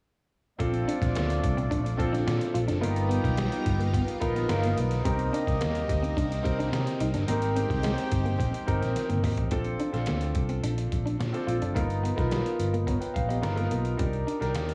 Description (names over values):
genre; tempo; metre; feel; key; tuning
polished 1980s jazz-funk pop; 108 BPM; 4/4; straight; Bb major; A4 = 440 Hz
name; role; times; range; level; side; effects
mellow horn section; second line; 0.6-9.2 s; A3 to G5; -37 LUFS; equal; digital delay
clear concert grand piano; accompaniment; 0.6-14.7 s; A#3 to A#5; -34 LUFS; equal; subtle chorus
phased string machine; sustained chords; 0.6-9.5 s; Bb2 to A#5; -40 LUFS; equal; ensemble chorus, phaser
semi-hollow electric guitar; riff; 0.6-14.6 s; G3 to F4; -37 LUFS; equal; analog chorus
fingered electric bass; bass; 0.6-14.7 s; Gb1 to C3; -32 LUFS; equal; none
trip hop sampler-style drum kit; drums; 0.6-14.7 s; hi-hat, kick drum, snare drum, toms; -35 LUFS; equal; overdrive
room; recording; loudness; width
light reverb, digital ambience; small room ambience; -28 LUFS; mono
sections
0.6-9.5 A section; 9.5-14.7 B section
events
drum fill 9.0-9.5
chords
0.6 Bbmaj9; 2.8 G7alt; 5.1 Cm9; 7.3 Abmaj9; 9.5 Bbmaj9; 11.8 G7alt; 14.0 Cm9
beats
| 0.60 1.16 1.71 2.27 | 2.83 3.38 3.94 4.50 | 5.05 5.61 6.17 6.73 | 7.28 7.84 8.40 8.96 | 9.52 10.08 10.64 11.20 | 11.76 12.32 12.88 13.44 | 14.00 14.56